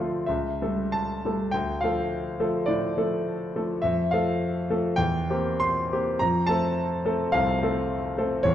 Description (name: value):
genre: classical, romantic character piece for solo piano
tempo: 105 BPM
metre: 4/4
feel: rubato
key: unclear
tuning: A4 = 440 Hz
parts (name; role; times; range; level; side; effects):
- clear concert grand piano; solo; 0.0-8.5 s; C2 to C6; -23 LUFS; equal; none
room: moderate recital hall reverb, RT60 1.5 s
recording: dark, warm production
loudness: -23 LUFS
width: side -10 dB against mid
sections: 0.0-8.5 A section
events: none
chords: 0.3 A7/C#; 1.5 Dm; 3.8 F; 5.0 C7/E; 6.2 F